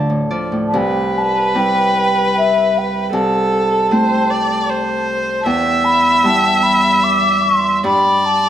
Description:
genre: celtic folk, Celtic slow air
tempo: 76 BPM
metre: 3/4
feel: uneven beats, rubato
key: unclear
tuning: A4 = 440 Hz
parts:
  - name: Celtic harp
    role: accompaniment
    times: 0.0-8.5 s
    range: C2 to A5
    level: -18 LUFS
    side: equal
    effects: none
  - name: mellow hollow baroque flute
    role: melody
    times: 0.7-8.5 s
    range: E5 to D6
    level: -16 LUFS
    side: equal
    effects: none
  - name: rich viola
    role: second line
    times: 0.7-8.5 s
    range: A4 to E5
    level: -18 LUFS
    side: equal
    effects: none
room: moderate recital hall reverb, RT60 1.6 s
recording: none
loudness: -13 LUFS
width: side -10 dB against mid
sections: 0.7-8.5 A section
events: harp fill 0.0-0.7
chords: 0.0 Dm; 0.7 C; 3.1 Am/C; 5.5 Em; 7.8 Gadd9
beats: | 0.74 1.56 2.37 | 3.15 3.92 4.69 | 5.46 6.24 7.03 | 7.85

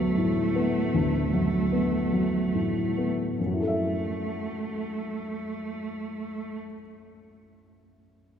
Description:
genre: neoclassical piano and strings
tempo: 46-54 BPM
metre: 4/4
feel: rubato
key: F# minor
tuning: A4 = 440 Hz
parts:
  - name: rich cello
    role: second line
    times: 0.0-6.6 s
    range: A3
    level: -32 LUFS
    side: right 4 dB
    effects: none
  - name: dark upright piano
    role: accompaniment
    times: 0.0-8.4 s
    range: D2 to E5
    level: -26 LUFS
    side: left 1 dB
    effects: none
room: wet church reverb, RT60 2.9 s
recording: recorded in a church or concert hall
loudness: -25 LUFS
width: side -8 dB against mid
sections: 0.0-3.4 A section; 3.4-8.3 B section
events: slowing down 0.0-3.4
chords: 0.0 Bm7/D; 3.4 F#m7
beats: 0.92 2.11 | 3.38 4.63 5.86 7.10

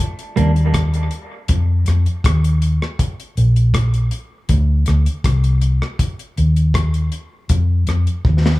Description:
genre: dub reggae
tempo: 80 BPM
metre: 4/4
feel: straight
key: Bb major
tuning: A4 = 440 Hz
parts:
  - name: deep reggae drum kit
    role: drums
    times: 0.2-8.6 s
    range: hi-hat, kick drum, rim click, snare drum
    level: -20 LUFS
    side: left 1 dB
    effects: none
  - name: clean electric guitar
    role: accompaniment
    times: 0.4-0.5 s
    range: G3 to D4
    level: -25 LUFS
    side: right 5 dB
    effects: dub echo
  - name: vintage muted fingered electric bass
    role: bass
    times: 0.4-8.6 s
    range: Bb1 to F2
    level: -14 LUFS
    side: equal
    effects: none
room: little or no reverb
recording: small room ambience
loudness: -15 LUFS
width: side -18 dB against mid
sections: 0.0-8.6 A section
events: break 0.0-8.6; drum fill 8.2-8.6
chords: 0.0 N.C.; 3.0 Bb; 6.0 Ebsus2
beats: 0.74 1.49 2.24 | 2.99 3.74 4.49 5.24 | 5.99 6.74 7.49 8.24

